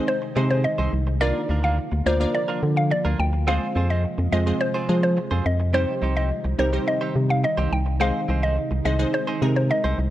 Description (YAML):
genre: pop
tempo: 106 BPM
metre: 4/4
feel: straight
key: unclear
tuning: A4 = 443 Hz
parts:
  - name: mallet-like synth pluck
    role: melody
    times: 0.0-10.1 s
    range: C5 to G5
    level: -26 LUFS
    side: equal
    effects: chorus
  - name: wavetable chord stab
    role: accompaniment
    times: 0.0-10.1 s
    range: G3 to D5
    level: -28 LUFS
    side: equal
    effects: none
  - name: glassy FM pad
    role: sustained chords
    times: 0.0-10.1 s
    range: C3 to F4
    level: -31 LUFS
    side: right 1 dB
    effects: ensemble chorus, built-in reverb
  - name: direct-recorded clean electric guitar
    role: riff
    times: 0.1-10.0 s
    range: Bb3 to C5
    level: -32 LUFS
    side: right 4 dB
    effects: lush chorus
  - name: organ-like FM bass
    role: bass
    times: 0.4-10.1 s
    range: C2 to F3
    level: -22 LUFS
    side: equal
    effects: none
room: digital ambience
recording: dry, gritty hardware recording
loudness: -20 LUFS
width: side -13 dB against mid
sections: 0.0-10.1 A section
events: none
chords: 0.0 Ab/C; 1.2 Bb; 3.5 Fm; 5.7 Cm; 8.0 Ab/C